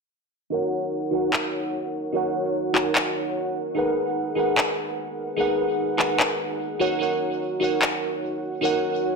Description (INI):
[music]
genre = future bass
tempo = 148 BPM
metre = 4/4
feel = swing 55% on 16ths, half-time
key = Eb minor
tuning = A4 = 440 Hz
[part]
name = glassy digital keys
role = accompaniment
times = 0.5-9.2 s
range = Eb4 to Gb5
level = -23 LUFS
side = right 1 dB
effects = chorus, low-pass filter, ping-pong delay
[part]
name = electronic handclaps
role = drums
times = 1.3-7.9 s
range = none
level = -23 LUFS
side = left 2 dB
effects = small room ambience
[sound]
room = moderate digital room reverb, RT60 1.1 s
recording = dense, heavily limited modern master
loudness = -22 LUFS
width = side -4 dB against mid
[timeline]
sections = 0.5-9.2 A section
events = filter sweep on synth keys 0.5-9.2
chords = 0.5 Ebm7; 3.8 Abm9; 6.8 Ebm7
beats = | 0.52 0.93 1.33 1.74 | 2.14 2.55 2.95 3.36 | 3.77 4.17 4.58 4.98 | 5.39 5.79 6.20 6.60 | 7.01 7.41 7.82 8.22 | 8.63 9.04